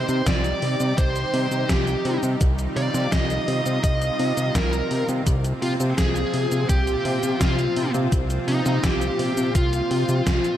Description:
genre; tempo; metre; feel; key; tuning
synthwave; 84 BPM; 4/4; straight; C minor; A4 = 439 Hz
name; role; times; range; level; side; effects
bluesy overdriven lead guitar; melody; 0.0-10.6 s; Eb4 to Eb5; -27 LUFS; equal; distortion, ping-pong delay
string machine, violins; second line; 0.0-10.6 s; Eb4 to Eb5; -33 LUFS; equal; ensemble chorus, cassette tape, ping-pong delay
lush unison pad; sustained chords; 0.0-10.6 s; Bb2 to G4; -28 LUFS; right 1 dB; chorus, sidechain pumping
fat analog bass; bass; 0.0-10.4 s; C2 to C3; -24 LUFS; equal; none
gated 80s digital drum machine; drums; 0.1-10.6 s; hi-hat, shaker, snare drum; -28 LUFS; equal; gated reverb, gated reverb snare, overdrive
electronic kick drum; drums; 0.3-10.4 s; none; -22 LUFS; equal; overdrive
room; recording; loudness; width
little or no reverb; none; -20 LUFS; side -11 dB against mid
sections
0.0-10.6 A section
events
none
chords
0.0 Cm; 5.3 Bbsus2/C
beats
0.27 0.98 1.69 | 2.41 3.12 3.84 4.55 | 5.27 5.98 6.69 7.41 | 8.12 8.84 9.55 10.27

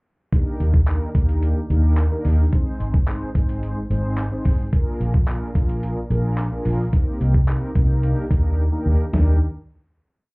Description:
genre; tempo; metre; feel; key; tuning
dance-pop; 109 BPM; 4/4; straight; Eb major; A4 = 440 Hz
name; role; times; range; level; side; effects
mellow synth brass; accompaniment; 0.3-9.4 s; Ab3 to C5; -28 LUFS; equal; chorus, sidechain pumping
dusty soul sampler-style drum kit; drums; 0.3-9.3 s; handclaps, hi-hat, kick drum, snare drum, toms; -19 LUFS; equal; none
vintage muted fingered electric bass; bass; 0.6-9.4 s; Ab1 to Eb2; -19 LUFS; equal; sidechain pumping
room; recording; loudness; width
little or no reverb; heard muffled through a wall, club ambience, EQ; -18 LUFS; side -31 dB against mid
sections
0.3-9.1 chorus; 9.1-10.3 final chord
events
silent gap 8.6-9.1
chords
0.3 Ebmaj7; 2.5 Ab; 4.7 Bb7; 6.9 Cm7; 8.0 Ebmaj7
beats
| 0.33 0.88 1.43 1.98 | 2.53 3.08 3.63 4.18 | 4.73 5.28 5.83 6.38 | 6.93 7.48 8.03 8.58 | 9.13

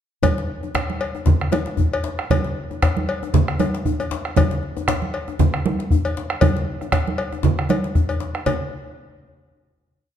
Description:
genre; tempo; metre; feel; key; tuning
west african traditional, West African drum ensemble; 117 BPM; 4/4; swing 55% on 16ths; none; none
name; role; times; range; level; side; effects
bombo; percussion; 0.2-8.7 s; none; -22 LUFS; right 1 dB; none
congas; percussion; 0.2-8.7 s; none; -24 LUFS; right 5 dB; none
cowbell; percussion; 0.2-8.7 s; none; -27 LUFS; left 4 dB; none
djembe; percussion; 0.2-8.7 s; none; -25 LUFS; left 5 dB; none
room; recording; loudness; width
wet recital hall reverb, RT60 1.6 s; dark, warm production; -19 LUFS; side -9 dB against mid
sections
0.2-8.5 A section; 8.5-10.2 final hit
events
none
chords
none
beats
| 0.23 0.75 1.27 1.79 | 2.30 2.82 3.33 3.85 | 4.37 4.88 5.39 5.91 | 6.42 6.93 7.44 7.95 | 8.46

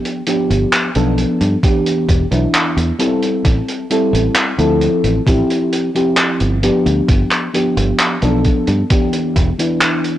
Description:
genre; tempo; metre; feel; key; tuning
vaporwave; 66 BPM; 4/4; straight; unclear; A4 = 440 Hz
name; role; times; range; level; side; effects
mellow FM electric piano; accompaniment; 0.0-10.2 s; E3 to A4; -16 LUFS; equal; lush chorus, analog delay
cloth-damped thuddy drum kit; drums; 0.1-10.2 s; handclaps, hi-hat; -18 LUFS; equal; vintage 12-bit sampler grit
fingered electric bass; bass; 0.5-9.5 s; E1 to G2; -17 LUFS; equal; transformer saturation
electronic kick drum; drums; 1.6-9.5 s; none; -15 LUFS; equal; overdrive, vintage 12-bit sampler grit
room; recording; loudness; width
small room ambience; dry, gritty hardware recording, cassette tape, faint mains hum; -13 LUFS; side -13 dB against mid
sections
0.0-10.2 A section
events
none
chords
0.0 G7; 1.6 Em7; 3.5 Am7; 4.8 G13sus4; 6.6 G7; 8.9 Em7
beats
0.72 1.63 2.54 | 3.45 4.36 5.27 6.18 | 7.09 8.00 8.91 9.82

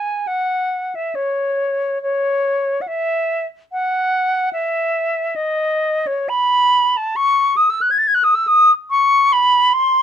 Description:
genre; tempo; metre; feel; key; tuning
classical, free, expressive piece for unaccompanied flute; 58-76 BPM; 3/4; rubato; C# minor; A4 = 440 Hz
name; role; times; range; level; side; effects
silver concert flute; solo; 0.0-10.0 s; C#5 to A6; -15 LUFS; equal; none
room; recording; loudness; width
light reverb; dark, warm production; -15 LUFS; side -8 dB against mid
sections
0.0-10.0 A section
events
none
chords
none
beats
0.28 1.17 | 2.03 2.88 3.72 | 4.53 5.34 6.31 | 7.19 8.02 8.86 | 9.70

